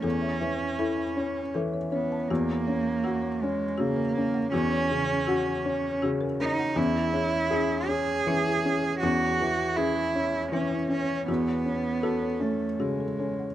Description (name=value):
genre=neoclassical piano and strings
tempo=80 BPM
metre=3/4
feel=rubato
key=unclear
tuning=A4 = 440 Hz
part: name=warm cello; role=second line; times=0.0-13.5 s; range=G#3 to G#4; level=-28 LUFS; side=right 4 dB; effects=slapback echo
part: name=felt-muted upright piano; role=accompaniment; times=0.0-13.5 s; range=E2 to A4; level=-28 LUFS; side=left 1 dB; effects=none
part: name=folk marimba with medium mallets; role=arpeggios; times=0.0-13.5 s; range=C#4 to A5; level=-35 LUFS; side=left 6 dB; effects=slapback echo
room=little or no reverb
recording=recorded outdoors, with no room sound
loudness=-24 LUFS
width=side -12 dB against mid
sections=0.0-13.5 A section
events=none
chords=0.0 A/E; 2.3 F#/E; 6.8 C#m/E; 11.3 F#m/E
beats=| 0.04 0.80 1.55 | 2.30 3.04 3.78 | 4.52 5.27 6.02 | 6.77 7.52 8.26 | 9.02 9.77 10.53 | 11.29 12.04 12.81